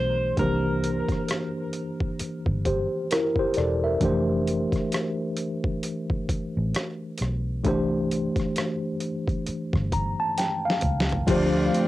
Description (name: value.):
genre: R&B, neo-soul.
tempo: 66 BPM.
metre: 4/4.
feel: swing 60% on 16ths.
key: unclear.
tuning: A4 = 440 Hz.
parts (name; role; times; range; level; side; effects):
electric guitar through a small old amp; melody; 0.0-1.2 s; Bb4 to C5; -30 LUFS; right 1 dB; cassette tape, tape echo.
tine electric piano; accompaniment; 0.0-11.9 s; Eb3 to Bb5; -26 LUFS; left 1 dB; overdrive, fast stereo tremolo.
vintage muted fingered electric bass; bass; 0.0-11.7 s; E1 to D2; -28 LUFS; equal; none.
boom bap sampler-style drum kit; drums; 0.4-11.9 s; crash cymbal, hi-hat, kick drum, rim click, snare drum, toms; -28 LUFS; equal; overdrive, cassette tape.
hollow soft pad; sustained chords; 11.3-11.9 s; D3 to F5; -31 LUFS; equal; chorus.
warm horn section; stabs; 11.3-11.9 s; C4 to F4; -30 LUFS; right 2 dB; none.
room: light reverb.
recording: home recording on cassette.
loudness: -23 LUFS.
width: side -16 dB against mid.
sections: 0.0-11.3 A section.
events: tine electric piano fill 9.5-11.3; drum fill 10.4-11.3.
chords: 0.4 C7; 4.0 F69; 7.6 C; 11.3 Dm7.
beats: | 0.37 1.28 2.19 3.10 | 4.00 4.91 5.82 6.73 | 7.64 8.55 9.46 10.37 | 11.28.